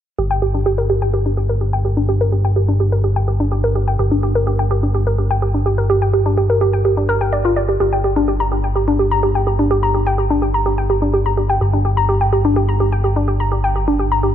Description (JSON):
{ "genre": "techno", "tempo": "126 BPM", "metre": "4/4", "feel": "straight", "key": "G minor", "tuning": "A4 = 440 Hz", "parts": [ { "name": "woody wave-folded pluck", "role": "arpeggios", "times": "0.2-14.3 s", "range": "D4 to Bb5", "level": "-17 LUFS", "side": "equal", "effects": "chorus, ping-pong delay" }, { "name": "fat analog bass", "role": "bass", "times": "0.2-14.3 s", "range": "G1", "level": "-17 LUFS", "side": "equal", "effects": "none" } ], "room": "light reverb", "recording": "none", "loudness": "-14 LUFS", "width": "side -10 dB against mid", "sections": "0.2-14.3 A section", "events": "filter sweep on synth pluck 0.2-14.3", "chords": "0.2 N.C.; 4.0 G5; 7.8 N.C.", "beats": "| 0.18 0.66 1.14 1.61 | 2.09 2.57 3.04 3.52 | 3.99 4.47 4.95 5.42 | 5.90 6.38 6.85 7.33 | 7.80 8.28 8.76 9.23 | 9.71 10.19 10.66 11.14 | 11.61 12.09 12.57 13.04 | 13.52 13.99" }